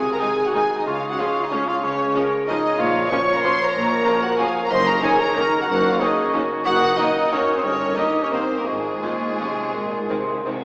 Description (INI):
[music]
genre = classical, orchestral ballroom waltz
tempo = 159-202 BPM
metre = 3/4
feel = rubato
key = unclear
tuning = A4 = 441 Hz
[part]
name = clear clarinet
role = second line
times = 0.0-10.6 s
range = Eb4 to F5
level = -30 LUFS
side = equal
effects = none
[part]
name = mellow flute section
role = second line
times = 0.0-10.6 s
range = C6 to Eb6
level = -30 LUFS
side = equal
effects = none
[part]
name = rich symphonic violin section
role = second line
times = 0.0-10.6 s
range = Ab4 to Db6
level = -28 LUFS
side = equal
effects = none
[part]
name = dark bassoon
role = accompaniment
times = 0.0-10.6 s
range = Eb3 to Ab3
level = -30 LUFS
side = equal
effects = none
[part]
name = warm French horn section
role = sustained chords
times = 0.0-10.6 s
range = Ab3 to Db5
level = -29 LUFS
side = equal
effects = none
[part]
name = concert harp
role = arpeggios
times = 0.0-10.6 s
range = Gb2 to Eb5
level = -35 LUFS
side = equal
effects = none
[part]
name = rich studio double bass section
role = bass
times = 0.0-10.0 s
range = Gb1 to Db2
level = -35 LUFS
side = equal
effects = none
[part]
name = rich symphonic cello section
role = bass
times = 0.0-10.6 s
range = Gb2 to Db3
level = -35 LUFS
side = equal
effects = none
[part]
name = mellow cor anglais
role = second line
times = 0.1-10.6 s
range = Ab3 to Db5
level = -30 LUFS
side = equal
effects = none
[part]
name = clear symphonic violin section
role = melody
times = 0.2-10.5 s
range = Bb3 to Eb4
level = -35 LUFS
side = equal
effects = none
[part]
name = rich symphonic viola section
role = accompaniment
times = 0.2-10.5 s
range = Eb3 to Bb3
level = -34 LUFS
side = equal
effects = none
[sound]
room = wet scoring stage reverb, RT60 1.9 s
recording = recorded in a church or concert hall, small speaker sound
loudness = -21 LUFS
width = mono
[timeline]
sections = 0.0-10.6 A section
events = none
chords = 0.0 Ab/C; 0.9 Db; 2.8 Bbm; 4.7 Gb6; 6.7 Ebm/Gb; 7.6 Eb7/G; 8.7 Db/Ab; 9.7 Ab